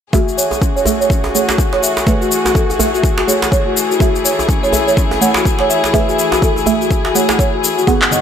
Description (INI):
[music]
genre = afro house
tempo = 124 BPM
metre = 4/4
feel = swing 60% on 16ths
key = F# minor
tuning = A4 = 440 Hz
[part]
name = dark chamber string section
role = sustained chords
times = 0.1-8.2 s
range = F#2 to G#4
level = -19 LUFS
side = left 2 dB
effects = vintage 12-bit sampler grit, sidechain pumping
[part]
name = folk marimba with soft mallets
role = arpeggios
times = 0.1-8.2 s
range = C#4 to E5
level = -18 LUFS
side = equal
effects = sidechain pumping, low-pass filter, dub echo
[part]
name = deep mellow chord stab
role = stabs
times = 0.1-8.2 s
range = A3 to F#5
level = -20 LUFS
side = right 4 dB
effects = chorus, phaser, vintage 12-bit sampler grit, sidechain pumping, dub echo
[part]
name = electronic kick drum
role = drums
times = 0.1-8.0 s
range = none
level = -15 LUFS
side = equal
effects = overdrive
[part]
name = electronic shaker and handclaps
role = drums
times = 0.1-8.2 s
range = none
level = -19 LUFS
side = left 3 dB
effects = none
[part]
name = djembe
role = percussion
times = 0.1-8.0 s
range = none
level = -21 LUFS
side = right 2 dB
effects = none
[part]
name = congas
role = percussion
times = 8.1-8.2 s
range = none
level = -20 LUFS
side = left 2 dB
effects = none
[sound]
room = light reverb, studio reverb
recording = none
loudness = -12 LUFS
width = side -8 dB against mid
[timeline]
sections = 0.1-8.2 A section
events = filter sweep on marimba 0.1-8.2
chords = 0.1 F#m9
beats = | 0.13 0.62 1.10 1.58 | 2.07 2.55 3.04 3.52 | 4.00 4.49 4.97 5.46 | 5.94 6.42 6.91 7.39 | 7.88